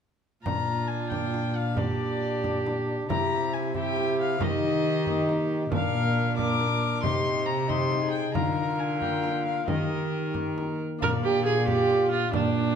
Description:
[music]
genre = classical, renaissance-style consort dance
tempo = 91 BPM (dotted quarters)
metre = 6/8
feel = straight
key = Bb major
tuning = A4 = 442 Hz
[part]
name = dark violin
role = melody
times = 0.4-12.8 s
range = D5 to D6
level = -32 LUFS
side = left 6 dB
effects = none
[part]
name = warm cello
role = bass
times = 0.4-12.8 s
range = Bb2 to Eb3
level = -30 LUFS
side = right 2 dB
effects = none
[part]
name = warm viola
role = second line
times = 0.5-12.8 s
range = D4 to Bb4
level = -29 LUFS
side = right 4 dB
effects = none
[part]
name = concert harp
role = accompaniment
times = 0.5-12.8 s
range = Bb2 to E5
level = -32 LUFS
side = left 8 dB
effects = none
[part]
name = mellow bassoon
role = accompaniment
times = 0.5-12.8 s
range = D4 to G4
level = -32 LUFS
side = left 2 dB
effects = none
[part]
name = frame drum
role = percussion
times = 0.5-12.5 s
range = none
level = -34 LUFS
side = right 3 dB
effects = none
[sound]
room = wet stone room reverb, RT60 1.3 s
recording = none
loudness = -24 LUFS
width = side -7 dB against mid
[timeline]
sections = 0.5-11.0 A section; 11.0-12.8 A section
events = none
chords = 0.5 Bb; 1.8 Gm/Bb; 3.1 C; 4.4 Eb; 5.7 Bb; 7.0 Cm; 8.3 Bb/D; 9.7 Eb; 11.0 Bb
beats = | 0.45 1.12 | 1.77 2.43 | 3.09 3.75 | 4.40 5.06 | 5.71 6.38 | 7.03 7.69 | 8.35 9.01 | 9.68 10.35 | 11.01 11.67 | 12.33

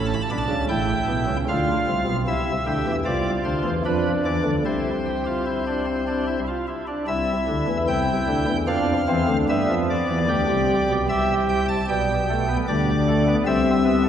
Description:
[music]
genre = classical, baroque-style 3-part fugue for pipe organ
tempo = 75 BPM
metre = 3/4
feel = straight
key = C major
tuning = A4 = 440 Hz
[part]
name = pipe organ, cornet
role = solo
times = 0.0-14.1 s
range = A1 to B5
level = -20 LUFS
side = equal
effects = none
[sound]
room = wet church reverb, RT60 3.1 s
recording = recorded in a church or concert hall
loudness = -20 LUFS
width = side -9 dB against mid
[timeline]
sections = 0.0-7.1 A section; 7.1-14.1 B section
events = none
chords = 0.0 A7; 1.5 Dm; 2.3 C; 3.0 Dm7/C; 3.8 Dm69; 4.6 C; 8.7 Dm7/F; 9.5 G7; 11.1 C; 11.9 G/B; 13.4 Am/C (rootless)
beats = 0.68 1.47 | 2.26 3.05 3.84 | 4.65 5.46 6.27 | 7.07 7.88 8.68 | 9.48 10.28 11.07 | 11.87 12.66 13.45

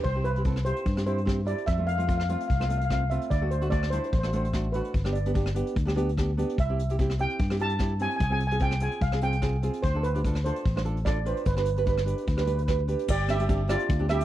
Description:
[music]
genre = calypso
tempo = 147 BPM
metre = 4/4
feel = swing 54% on 16ths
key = C major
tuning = A4 = 442 Hz
[part]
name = steel pan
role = melody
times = 0.0-14.2 s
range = F4 to A5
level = -31 LUFS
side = right 1 dB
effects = none
[part]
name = nylon-string guitar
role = accompaniment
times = 0.0-14.2 s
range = A3 to C5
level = -32 LUFS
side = right 2 dB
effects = none
[part]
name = fingered electric bass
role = bass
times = 0.0-14.2 s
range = G1 to G2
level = -27 LUFS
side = equal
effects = none
[part]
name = vintage brush drum kit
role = drums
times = 0.0-14.2 s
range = crash cymbal, hi-hat, kick drum, rim click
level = -30 LUFS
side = equal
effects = none
[sound]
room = studio reverb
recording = dry, close 1970s-style studio recording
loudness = -24 LUFS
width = side -13 dB against mid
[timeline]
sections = 0.0-13.1 A section; 13.1-14.2 B section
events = none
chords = 0.0 Cmaj7; 1.7 F; 3.3 D; 4.9 G; 6.6 C; 8.2 Fmadd9/C; 9.8 Dm7; 11.5 G; 13.1 Gsus4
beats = | 0.04 0.45 0.85 1.26 | 1.67 2.08 2.49 2.90 | 3.31 3.72 4.12 4.53 | 4.94 5.35 5.76 6.17 | 6.57 6.98 7.39 7.80 | 8.20 8.61 9.02 9.43 | 9.83 10.24 10.65 11.05 | 11.46 11.87 12.27 12.68 | 13.08 13.49 13.89

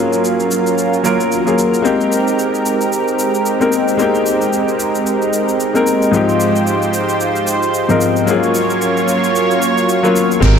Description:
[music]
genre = sunset chillout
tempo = 112 BPM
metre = 4/4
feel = swing 57% on 16ths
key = unclear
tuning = A4 = 438 Hz
[part]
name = clear concert grand piano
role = accompaniment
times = 0.0-10.6 s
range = Ab2 to Db5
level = -16 LUFS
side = moving between left 5 dB and right 4 dB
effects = auto-pan, digital delay
[part]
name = lush unison pad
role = sustained chords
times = 0.0-10.6 s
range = Eb3 to G5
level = -15 LUFS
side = right 2 dB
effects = chorus
[part]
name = electronic shaker and hi-hat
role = drums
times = 0.1-10.5 s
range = none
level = -26 LUFS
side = left 1 dB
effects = none
[part]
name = fingered electric bass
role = bass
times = 10.4-10.6 s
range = Ab1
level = -10 LUFS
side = right 2 dB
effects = none
[part]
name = electronic kick drum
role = drums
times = 10.4-10.5 s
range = none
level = -15 LUFS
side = right 2 dB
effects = none
[part]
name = downlifter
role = sound effects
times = 10.4-10.6 s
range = none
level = -20 LUFS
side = right 1 dB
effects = none
[sound]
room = wet lush hall reverb, RT60 2.3 s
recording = none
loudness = -13 LUFS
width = side -7 dB against mid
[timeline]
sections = 0.0-10.4 A section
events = filter sweep on analog synth pad 0.0-10.4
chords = 0.0 Gbmaj7; 1.9 Abmaj9; 6.1 Fm9/Ab; 8.3 Gbmaj7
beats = 0.24 0.78 1.31 | 1.85 2.39 2.92 3.46 | 3.99 4.53 5.07 5.60 | 6.14 6.67 7.21 7.74 | 8.28 8.81 9.35 9.89 | 10.42

